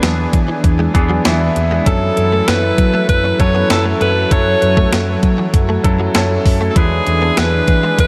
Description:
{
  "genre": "1980s-style pop",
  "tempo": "98 BPM",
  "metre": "4/4",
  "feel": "straight",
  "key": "unclear",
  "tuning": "A4 = 440 Hz",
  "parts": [
    { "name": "bright concert grand piano", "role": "accompaniment", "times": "0.0-8.1 s", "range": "E3 to B4", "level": "-22 LUFS", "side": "equal", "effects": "none" },
    { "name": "warm analog pad", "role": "sustained chords", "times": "0.0-8.1 s", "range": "E3 to G#5", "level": "-24 LUFS", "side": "equal", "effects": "chorus" },
    { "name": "direct-recorded clean electric guitar", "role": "riff", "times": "0.0-8.0 s", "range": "E3 to C#4", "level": "-27 LUFS", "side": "equal", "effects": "none" },
    { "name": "mellow fretless electric bass", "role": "bass", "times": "0.0-8.1 s", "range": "E2 to F#3", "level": "-21 LUFS", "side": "equal", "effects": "subtle chorus" },
    { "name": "clean 12-bit digital drum machine", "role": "drums", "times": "0.0-8.1 s", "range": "hi-hat, kick drum, snare drum", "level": "-19 LUFS", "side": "equal", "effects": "overdrive" },
    { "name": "bright alto saxophone", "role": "melody", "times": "1.9-8.1 s", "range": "G#4 to C#5", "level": "-21 LUFS", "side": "equal", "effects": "analog delay" }
  ],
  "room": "moderate huge ambient reverb, RT60 8.4 s",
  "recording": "dreamy mix soaked in reverb",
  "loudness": "-14 LUFS",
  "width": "mono",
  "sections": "0.0-8.1 A section",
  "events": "none",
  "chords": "0.0 E7; 1.9 F#m7; 6.8 E7"
}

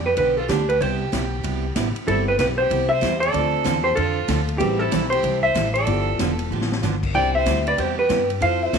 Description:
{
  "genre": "country, western swing",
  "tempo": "189 BPM",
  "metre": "4/4",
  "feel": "swing 64% on 8ths",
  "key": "C major",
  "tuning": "A4 = 439 Hz",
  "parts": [
    { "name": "hollow-body jazz guitar", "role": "melody", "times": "0.0-8.8 s", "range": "G4 to G5", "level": "-21 LUFS", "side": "equal", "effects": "none" },
    { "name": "clear fiddle", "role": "second line", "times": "0.0-8.8 s", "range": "C4 to D5", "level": "-28 LUFS", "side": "right 7 dB", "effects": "none" },
    { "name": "upright bass", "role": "bass", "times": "0.0-8.8 s", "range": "E1 to G2", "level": "-26 LUFS", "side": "left 2 dB", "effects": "none" },
    { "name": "picked steel-string acoustic guitar", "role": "accompaniment", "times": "0.2-8.8 s", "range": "C3 to A4", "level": "-28 LUFS", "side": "right 9 dB", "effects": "none" },
    { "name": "swinging big-band drum kit", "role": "drums", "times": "0.2-8.8 s", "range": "crash cymbal, hi-hat, kick drum, ride cymbal, snare drum", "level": "-29 LUFS", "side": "left 3 dB", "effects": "none" },
    { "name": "dark upright piano", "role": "accompaniment", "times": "2.1-8.8 s", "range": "B3 to C5", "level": "-30 LUFS", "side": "left 14 dB", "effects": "none" }
  ],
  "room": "moderate echo chamber reverb, RT60 1.5 s, small room ambience",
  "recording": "1960s-style stereo with parts hard left and right",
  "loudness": "-18 LUFS",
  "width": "side -6 dB against mid",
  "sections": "0.0-8.8 A section",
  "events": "drum fill 6.5-6.8",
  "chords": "0.0 G7; 0.8 Cmaj7; 3.3 Dm7; 4.6 Am7; 5.9 G13; 7.1 Cmaj9"
}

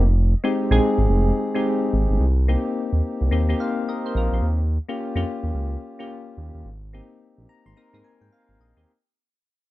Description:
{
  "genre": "R&B, new jack swing",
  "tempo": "108 BPM",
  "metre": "4/4",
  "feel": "swing 61% on 16ths",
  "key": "F minor",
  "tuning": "A4 = 440 Hz",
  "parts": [
    { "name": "smooth synth bass", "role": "bass", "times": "0.0-8.9 s", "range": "F1 to Ab2", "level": "-20 LUFS", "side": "equal", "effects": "none" },
    { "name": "soft electric-piano-like synth keys", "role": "accompaniment", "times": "0.4-8.9 s", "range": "Ab3 to C6", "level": "-24 LUFS", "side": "left 1 dB", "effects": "chorus, tremolo" }
  ],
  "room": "little or no reverb",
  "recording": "dark, warm production",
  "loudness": "-19 LUFS",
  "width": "side -16 dB against mid",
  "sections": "0.0-8.9 A section",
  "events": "fade-out 0.0-8.9; synth keys fill 7.2-8.9",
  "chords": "0.0 Fm7; 2.2 Cm7; 4.4 Eb9; 6.7 Abmaj7"
}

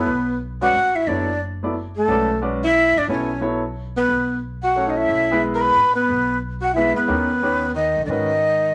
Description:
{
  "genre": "modal jazz",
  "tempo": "180 BPM",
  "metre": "3/4",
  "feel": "swing 65% on 8ths",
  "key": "unclear",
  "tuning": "A4 = 440 Hz",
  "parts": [
    { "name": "breathy jazz flute", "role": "melody", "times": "0.0-8.7 s", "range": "A4 to B5", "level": "-22 LUFS", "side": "equal", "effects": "none" },
    { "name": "dark tenor saxophone", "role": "second line", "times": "0.0-8.7 s", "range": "D3 to B4", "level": "-26 LUFS", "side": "equal", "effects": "none" },
    { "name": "clear concert grand piano", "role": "accompaniment", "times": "0.0-8.3 s", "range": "D#3 to D5", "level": "-27 LUFS", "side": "equal", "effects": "none" },
    { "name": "upright bass", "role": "bass", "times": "0.0-8.7 s", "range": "F#1 to D#2", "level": "-33 LUFS", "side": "equal", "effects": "none" }
  ],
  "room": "moderate studio reverb, RT60 0.8 s",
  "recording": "none",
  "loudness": "-20 LUFS",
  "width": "mono",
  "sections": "0.1-8.1 A section",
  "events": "none",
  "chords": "0.1 Bm9; 4.1 E/B; 7.1 D#7b13; 8.1 G#m"
}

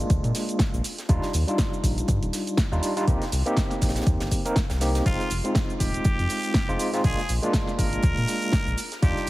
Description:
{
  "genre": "deep house",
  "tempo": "121 BPM",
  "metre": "4/4",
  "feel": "swing 57% on 16ths",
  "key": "F dorian",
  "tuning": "A4 = 440 Hz",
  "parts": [
    { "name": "overdriven tine electric piano", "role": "stabs", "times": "0.0-9.3 s", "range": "G3 to Bb4", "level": "-28 LUFS", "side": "equal", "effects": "fast tremolo, sidechain pumping, dub echo" },
    { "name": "round analog bass", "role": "bass", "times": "0.0-9.3 s", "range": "Eb1 to Bb2", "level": "-26 LUFS", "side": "equal", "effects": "sidechain pumping" },
    { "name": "punchy analog drum machine", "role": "drums", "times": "0.0-9.3 s", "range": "hi-hat, shaker, snare drum", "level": "-31 LUFS", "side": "equal", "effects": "none" },
    { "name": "crisp fusion drum kit", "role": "drums", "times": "0.1-9.3 s", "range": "hi-hat, snare drum", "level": "-40 LUFS", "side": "right 2 dB", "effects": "none" },
    { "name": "electronic kick drum", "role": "drums", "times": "0.1-9.1 s", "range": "none", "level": "-24 LUFS", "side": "equal", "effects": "none" },
    { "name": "trumpet with straight mute", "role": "melody", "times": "5.1-9.3 s", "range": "F4 to Bb4", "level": "-30 LUFS", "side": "equal", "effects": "dub echo" }
  ],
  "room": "light reverb, studio reverb",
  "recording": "heavily compressed radio sound",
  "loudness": "-22 LUFS",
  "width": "side -18 dB against mid",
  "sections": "0.0-9.3 A section",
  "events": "none",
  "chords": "0.0 Bb7; 0.8 Ebmaj9; 3.1 Cm7; 5.1 Fm7; 7.0 Bb7; 8.8 Ebmaj9"
}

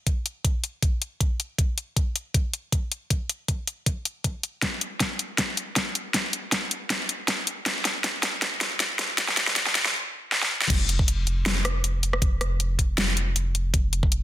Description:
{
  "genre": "future bass",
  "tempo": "158 BPM",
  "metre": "4/4",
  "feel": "swing 54% on 16ths, half-time",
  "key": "unclear",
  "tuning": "A4 = 440 Hz",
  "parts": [
    { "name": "dubstep drum kit", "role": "drums", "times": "0.1-14.2 s", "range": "crash cymbal, hi-hat, rim click, snare drum", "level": "-24 LUFS", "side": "left 1 dB", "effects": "overdrive" },
    { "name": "electronic kick drum", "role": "drums", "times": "0.1-14.1 s", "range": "none", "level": "-24 LUFS", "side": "equal", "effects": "none" },
    { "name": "warm 808-style bass", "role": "bass", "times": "10.7-14.2 s", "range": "F1", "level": "-25 LUFS", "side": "equal", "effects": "sidechain pumping" }
  ],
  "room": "light reverb, digital ambience",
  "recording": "dense, heavily limited modern master, high-pass filter",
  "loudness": "-23 LUFS",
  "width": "side -13 dB against mid",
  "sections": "0.0-10.7 A section; 10.7-14.2 B section",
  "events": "build-up 0.0-10.7; filter sweep 0.0-10.7; drum fill 4.6-9.9, 10.3-10.7; stop 9.9-10.7; drop 10.7-14.2",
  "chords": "none"
}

